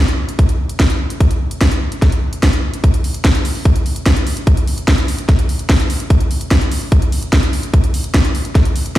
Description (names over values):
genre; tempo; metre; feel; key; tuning
trance; 147 BPM; 4/4; straight; none; none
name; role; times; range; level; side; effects
drum and bass drum kit; drums; 0.1-9.0 s; hi-hat, snare drum; -20 LUFS; equal; overdrive
electronic kick drum; drums; 0.4-9.0 s; none; -14 LUFS; equal; none
room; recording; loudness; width
light reverb; played on a big sound system in a bare room, large studio reverb; -13 LUFS; side -15 dB against mid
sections
0.0-9.0 A section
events
none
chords
none